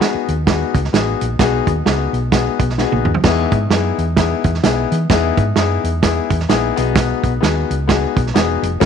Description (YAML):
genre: uptempo 1960s-style soul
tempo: 129 BPM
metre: 4/4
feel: swing 60% on 8ths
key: B major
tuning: A4 = 437 Hz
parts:
  - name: clear concert grand piano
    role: accompaniment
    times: 0.0-8.9 s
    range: B3 to A#4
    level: -19 LUFS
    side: left 11 dB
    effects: none
  - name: warm soul drum kit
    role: drums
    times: 0.0-8.9 s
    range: hi-hat, kick drum, snare drum, splash cymbal, toms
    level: -18 LUFS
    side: right 5 dB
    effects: none
  - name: hollow-body short-scale fingered electric bass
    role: bass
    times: 0.1-8.9 s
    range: E1 to E3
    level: -20 LUFS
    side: equal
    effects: none
room: light reverb, small room ambience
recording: 1960s-style stereo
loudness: -14 LUFS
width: side -7 dB against mid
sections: 0.0-8.9 A section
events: drum fill 2.8-3.2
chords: 0.0 B6; 3.2 Emaj7; 6.7 B6